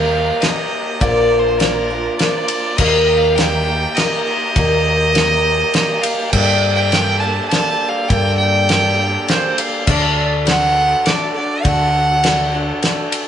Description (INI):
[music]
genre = folk rock and heartland rock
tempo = 102 BPM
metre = 3/4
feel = straight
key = G minor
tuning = A4 = 440 Hz
[part]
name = rich fiddle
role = melody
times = 0.0-12.8 s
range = Bb4 to A5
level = -18 LUFS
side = right 2 dB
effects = none
[part]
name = picked old ladder-braced acoustic guitar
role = accompaniment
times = 0.0-13.3 s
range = G2 to Bb4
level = -19 LUFS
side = left 1 dB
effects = none
[part]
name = tonewheel organ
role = sustained chords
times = 0.0-13.3 s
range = Bb3 to D5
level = -26 LUFS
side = right 3 dB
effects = overdrive, stopped rotary speaker
[part]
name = hollow-body short-scale picked electric bass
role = bass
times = 0.0-12.7 s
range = Bb1 to G2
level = -20 LUFS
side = equal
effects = none
[part]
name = damped 70s drum kit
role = drums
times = 0.4-13.3 s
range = crash cymbal, kick drum, ride cymbal, snare drum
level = -19 LUFS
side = left 1 dB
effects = none
[part]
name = overdriven slide guitar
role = second line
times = 9.3-10.3 s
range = C5 to F5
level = -22 LUFS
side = right 5 dB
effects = none
[sound]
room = wet stone room reverb, RT60 0.9 s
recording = band playing live in one room, nothing above 10.6 kHz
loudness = -13 LUFS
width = side -9 dB against mid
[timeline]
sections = 0.0-13.3 A section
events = none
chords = 0.0 Eb; 1.0 Bb; 2.8 Eb; 6.3 Gmadd9; 9.9 D